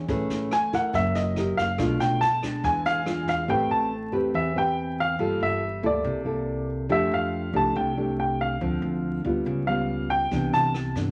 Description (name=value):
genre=bossa nova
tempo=141 BPM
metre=4/4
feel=straight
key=A minor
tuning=A4 = 439 Hz
part: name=nylon-string guitar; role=accompaniment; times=0.0-11.1 s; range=B2 to B4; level=-29 LUFS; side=equal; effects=none
part: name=upright bass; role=bass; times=0.0-11.1 s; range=F#1 to G2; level=-35 LUFS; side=equal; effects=none
part: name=jazz brush drum kit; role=drums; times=0.1-3.3, 10.3-11.0 s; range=kick drum, rim click, snare drum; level=-39 LUFS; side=equal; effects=none
part: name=warm baby grand piano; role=melody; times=0.5-10.9 s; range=D5 to A5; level=-28 LUFS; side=equal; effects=none
room=moderate large studio reverb, RT60 1.2 s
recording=vinyl crackle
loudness=-25 LUFS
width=mono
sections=0.0-3.5 A section; 3.5-11.1 B section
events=none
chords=0.1 Amaj9; 0.9 F#7b9; 1.8 Bm7b5; 2.6 E7b9; 3.5 Am9; 5.2 Gm9; 6.0 C13; 6.9 F69; 8.6 Dm7; 9.5 C#7#11; 10.3 Cmaj9